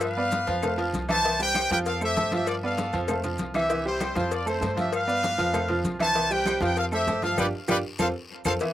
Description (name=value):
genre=latin, salsa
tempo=196 BPM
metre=4/4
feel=straight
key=unclear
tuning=A4 = 440 Hz
part: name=bright trumpet section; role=melody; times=0.0-8.5 s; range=E4 to A5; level=-26 LUFS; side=left 1 dB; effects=none
part: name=bright upright piano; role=accompaniment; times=0.0-8.7 s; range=E3 to F5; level=-28 LUFS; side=right 2 dB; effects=slapback echo
part: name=upright bass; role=bass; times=0.0-8.6 s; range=G1 to G2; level=-33 LUFS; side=equal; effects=none
part: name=claves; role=percussion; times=0.0-8.5 s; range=none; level=-38 LUFS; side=left 6 dB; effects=none
part: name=congas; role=percussion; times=0.0-8.7 s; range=none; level=-34 LUFS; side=left 1 dB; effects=none
part: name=cowbell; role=percussion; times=0.0-8.7 s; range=none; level=-34 LUFS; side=left 8 dB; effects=none
part: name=guiro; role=percussion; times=0.0-8.5 s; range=none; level=-46 LUFS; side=left 5 dB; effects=slapback echo
part: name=maracas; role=percussion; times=0.0-8.7 s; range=none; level=-43 LUFS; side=right 6 dB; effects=none
room=little or no reverb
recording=recorded outdoors, with no room sound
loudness=-23 LUFS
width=side -13 dB against mid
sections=0.0-8.6 A section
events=band accent 7.4-8.6; drum fill 7.8-8.6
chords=0.0 G7; 0.6 F; 1.2 C; 1.9 F; 2.5 G7; 3.1 F; 3.7 C; 4.3 F; 4.9 G7; 5.5 F; 6.2 C; 6.8 F; 7.4 G7(no3); 8.0 F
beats=| 0.01 0.32 0.63 0.94 | 1.24 1.55 1.86 2.17 | 2.47 2.78 3.09 3.39 | 3.70 4.01 4.32 4.62 | 4.93 5.24 5.54 5.85 | 6.16 6.46 6.77 7.08 | 7.38 7.69 8.00 8.30 | 8.61